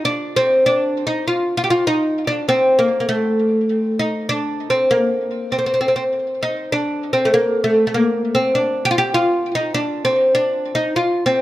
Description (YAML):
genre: arabic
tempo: 99 BPM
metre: 4/4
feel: straight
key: D maqam kurd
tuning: A4 = 440 Hz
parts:
  - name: oud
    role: solo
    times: 0.0-11.4 s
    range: A3 to G4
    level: -16 LUFS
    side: equal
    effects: tape echo
room: light reverb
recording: close, detailed microphones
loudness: -16 LUFS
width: side -15 dB against mid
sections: 0.0-11.4 A section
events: none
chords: none